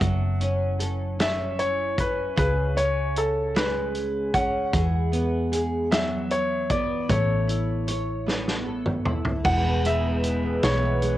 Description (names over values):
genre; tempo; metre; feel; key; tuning
six-eight pop ballad; 51 BPM (dotted quarters); 6/8; straight; unclear; A4 = 440 Hz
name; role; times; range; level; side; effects
clear baby grand piano; melody; 0.0-11.2 s; A4 to F#5; -27 LUFS; left 1 dB; analog delay
nylon-string guitar; accompaniment; 0.0-11.2 s; C#3 to C#5; -28 LUFS; equal; double-tracked left and right, cassette tape
hollow-body short-scale fingered electric bass; bass; 0.0-11.2 s; E1 to E2; -27 LUFS; equal; none
loose indie drum kit; drums; 0.0-11.2 s; crash cymbal, hi-hat, kick drum, snare drum, toms; -28 LUFS; equal; cassette tape
chorused pulse-width pad; sustained chords; 9.4-11.2 s; E3 to B4; -28 LUFS; equal; cassette tape
room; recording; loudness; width
moderate booth ambience, RT60 0.2 s; home recording on cassette; -22 LUFS; side -14 dB against mid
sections
0.0-9.5 A section; 9.5-11.2 B section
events
drum fill 8.3-9.5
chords
0.0 F#m7; 2.4 C#5; 4.7 Eadd9; 7.1 Aadd9; 9.5 E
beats
| 0.01 1.19 | 2.37 3.55 | 4.73 5.91 | 7.09 8.27 | 9.45 10.63